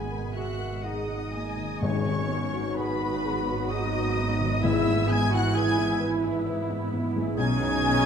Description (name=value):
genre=cinematic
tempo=65 BPM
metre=3/4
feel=rubato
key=G# minor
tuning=A4 = 440 Hz
part: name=muted symphonic violin section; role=melody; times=0.0-8.1 s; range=B5 to G#6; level=-33 LUFS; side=left 1 dB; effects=none
part: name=clear clarinet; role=second line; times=0.0-8.1 s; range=B3 to G#4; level=-35 LUFS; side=left 3 dB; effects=none
part: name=muted symphonic violin section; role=second line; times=0.0-8.1 s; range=B4 to G#5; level=-34 LUFS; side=left 2 dB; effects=none
part: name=felt-muted upright piano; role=accompaniment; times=0.0-8.1 s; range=B1 to B4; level=-31 LUFS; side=left 2 dB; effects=none
part: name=muted symphonic viola section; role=accompaniment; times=0.0-8.1 s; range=G#3 to F#4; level=-33 LUFS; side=right 3 dB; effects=none
part: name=concert harp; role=arpeggios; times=0.0-8.1 s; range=G#2 to F#5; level=-38 LUFS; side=left 5 dB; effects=none
part: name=muted symphonic cello section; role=bass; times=0.0-8.1 s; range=G#2 to B2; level=-34 LUFS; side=right 2 dB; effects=none
part: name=muted symphonic double bass section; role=bass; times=0.0-8.1 s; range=G#1 to B1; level=-33 LUFS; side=right 4 dB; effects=none
part: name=silver concert flute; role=second line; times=0.4-8.1 s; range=B4 to G#5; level=-36 LUFS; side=left 1 dB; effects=none
part: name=mellow French horn section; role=sustained chords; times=1.8-8.1 s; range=D#3 to E4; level=-32 LUFS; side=equal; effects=none
part: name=timpani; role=percussion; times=1.8-6.0 s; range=G#2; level=-33 LUFS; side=left 2 dB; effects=none
room=wet scoring stage reverb, RT60 1.6 s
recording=dark, warm production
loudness=-24 LUFS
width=side -7 dB against mid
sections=0.0-1.8 A section; 1.8-8.1 A section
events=none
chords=0.0 G#m7; 4.6 E/G#; 7.4 Badd9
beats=0.86 | 1.84 2.78 3.71 | 4.63 5.55 6.46 | 7.38